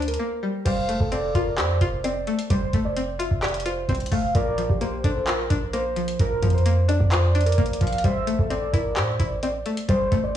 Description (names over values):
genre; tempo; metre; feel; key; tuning
hip hop, trap; 130 BPM; 4/4; half-time; F major; A4 = 440 Hz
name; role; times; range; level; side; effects
dark concert grand piano; melody; 0.0-10.4 s; G4 to E5; -29 LUFS; right 2 dB; tape echo
string-like resonator pluck; accompaniment; 0.0-10.4 s; Bb2 to D5; -28 LUFS; left 3 dB; chorus
warm 808-style bass; bass; 0.0-10.4 s; F1 to A2; -25 LUFS; equal; none
booming analog drum machine; drums; 0.0-10.3 s; crash cymbal, handclaps, hi-hat, kick drum; -26 LUFS; equal; none
warm velvety synth lead; second line; 0.7-10.3 s; Bb4 to F5; -30 LUFS; right 2 dB; chorus, tape echo
room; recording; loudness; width
light reverb, digital ambience; blown-out, overdriven recording, overdrive, small room ambience; -20 LUFS; side -10 dB against mid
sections
0.7-10.4 A section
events
break 0.2-0.7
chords
0.0 Gm; 0.7 Fadd9; 4.3 Bb; 8.0 Am7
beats
0.20 | 0.66 1.12 1.58 2.04 | 2.50 2.96 3.43 3.89 | 4.35 4.81 5.27 5.73 | 6.20 6.66 7.12 7.58 | 8.04 8.50 8.96 9.43 | 9.89 10.35